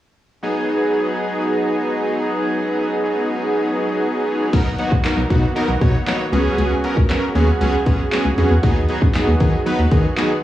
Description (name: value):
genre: dance-pop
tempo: 117 BPM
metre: 4/4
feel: straight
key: G# minor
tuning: A4 = 440 Hz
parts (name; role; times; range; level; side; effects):
- big bright polysynth; accompaniment; 0.4-10.3 s; F#3 to C#5; -19 LUFS; equal; sidechain pumping, cassette tape
- pipe organ, strings celeste; sustained chords; 0.4-10.4 s; C#3 to G#4; -27 LUFS; right 1 dB; sidechain pumping, cassette tape
- organ-like FM bass; bass; 4.5-10.1 s; B1 to D#3; -18 LUFS; equal; sidechain pumping
- house drum kit; drums; 4.5-10.3 s; crash cymbal, handclaps, hi-hat, kick drum, snare drum; -18 LUFS; equal; cassette tape
room: light reverb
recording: home recording on cassette, studio reverb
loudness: -16 LUFS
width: side -13 dB against mid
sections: 0.4-4.5 A section; 4.5-10.4 B section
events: none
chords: 0.4 G#m7; 4.5 Bmaj7; 6.3 C#7sus4; 8.6 G#m7/D#